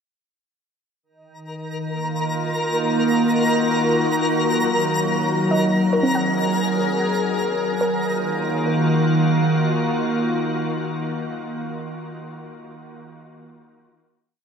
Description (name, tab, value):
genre	ambient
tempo	71 BPM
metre	4/4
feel	straight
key	Eb dorian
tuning	A4 = 445 Hz
part	soft additive organ-like pad	sustained chords	1.5-11.7 s	Eb3 to Bb4	-21 LUFS	equal	ensemble chorus, built-in reverb
part	twinkling granular texture	texture	1.5-7.8 s	Bb4 to Bb5	-25 LUFS	left 1 dB	built-in reverb
part	organ-like drone	drone	1.7-11.3 s	Eb3 to Eb4	-31 LUFS	equal	ensemble chorus, built-in reverb
part	soft round pluck	arpeggios	5.5-11.4 s	C4 to Gb5	-26 LUFS	right 1 dB	lush chorus, diffuse ambient delay
room	wet huge ambient reverb, RT60 9.1 s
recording	none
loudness	-18 LUFS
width	side -6 dB against mid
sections	1.1-7.8 A section; 7.8-11.2 final chord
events	fade-out on synth drone 1.1-7.8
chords	1.1 Ebmadd9; 4.4 Gb; 7.8 Ebmadd9